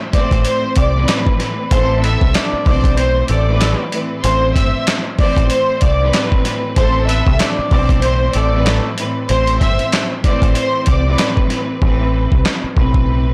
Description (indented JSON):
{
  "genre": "hip hop, boom-bap hip-hop",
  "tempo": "95 BPM",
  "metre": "4/4",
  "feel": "swing 58% on 16ths",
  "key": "A minor",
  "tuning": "A4 = 440 Hz",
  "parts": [
    { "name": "warm studio violin section", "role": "melody", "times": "0.1-11.2 s", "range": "C5 to E6", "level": "-22 LUFS", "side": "equal", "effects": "high-pass filter, low-pass filter, plate reverb, tape echo" },
    { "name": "rich studio string section", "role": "accompaniment", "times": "0.1-13.3 s", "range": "A2 to C5", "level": "-23 LUFS", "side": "equal", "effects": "cassette tape, high-pass filter, low-pass filter, plate reverb" },
    { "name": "boom bap sampler-style drum kit", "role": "drums", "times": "0.1-13.1 s", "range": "handclaps, hi-hat, kick drum, snare drum", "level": "-19 LUFS", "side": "equal", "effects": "none" },
    { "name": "deep dub picked electric bass", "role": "bass", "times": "0.3-13.3 s", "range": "G1 to C2", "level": "-19 LUFS", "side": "equal", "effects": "transformer saturation" },
    { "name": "warm horn section", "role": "stabs", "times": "2.0-8.9 s", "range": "A3 to D5", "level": "-27 LUFS", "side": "equal", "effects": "high-pass filter, low-pass filter, plate reverb, tape echo" }
  ],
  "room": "light reverb",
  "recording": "blown-out, overdriven recording, overdrive",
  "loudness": "-15 LUFS",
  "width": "mono",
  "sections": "0.0-11.8 A section; 11.8-13.3 B section",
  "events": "hi-hats muted 11.8-13.3",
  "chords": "0.0 Amadd9",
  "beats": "0.45 1.08 | 1.71 2.34 2.98 3.61 | 4.24 4.87 5.50 6.13 | 6.76 7.40 8.03 8.66 | 9.29 9.92 10.55 11.19 | 11.82 12.45 13.08"
}